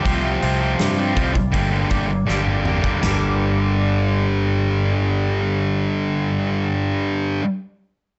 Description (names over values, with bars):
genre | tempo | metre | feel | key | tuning
quiet-loud alternative rock | 80 BPM | 4/4 | straight | G minor | A4 = 440 Hz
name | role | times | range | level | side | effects
twangy electric guitar | arpeggios | 0.0-7.5 s | G2 to G4 | -32 LUFS | equal | analog chorus
thick fuzz guitar | riff | 0.0-7.4 s | G2 to G4 | -22 LUFS | equal | distortion
growling fingered electric bass | bass | 0.1-7.4 s | G1 to G2 | -26 LUFS | equal | overdrive
loose indie drum kit | drums | 0.1-3.2 s | hi-hat, kick drum, snare drum, splash cymbal, toms | -26 LUFS | equal | none
room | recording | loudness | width
light reverb | nothing above 8.0 kHz | -20 LUFS | mono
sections
0.0-3.0 A section; 3.0-6.0 B section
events
drum fill 2.3-3.0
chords
0.0 Csus4; 1.5 Gm